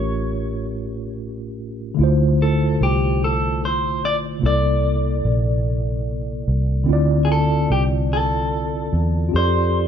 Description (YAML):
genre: slow six-eight R&B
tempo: 49 BPM (dotted quarters)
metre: 6/8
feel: straight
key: D minor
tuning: A4 = 441 Hz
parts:
  - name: clean electric guitar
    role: melody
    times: 0.0-9.9 s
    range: G4 to D5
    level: -24 LUFS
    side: left 2 dB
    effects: slapback echo
  - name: mellow tine electric piano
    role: accompaniment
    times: 0.0-9.9 s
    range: A2 to D5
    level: -22 LUFS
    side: equal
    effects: medium stereo tremolo
  - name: vintage muted fingered electric bass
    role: bass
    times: 0.0-9.9 s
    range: A1 to F2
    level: -21 LUFS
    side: equal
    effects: none
room: light reverb, digital ambience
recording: dark, warm production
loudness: -17 LUFS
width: side -8 dB against mid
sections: 0.0-2.0 A section; 2.0-9.9 B section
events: none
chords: 0.0 A7b9b13; 2.0 Dm9; 4.4 C13; 6.9 Dm9; 9.3 F69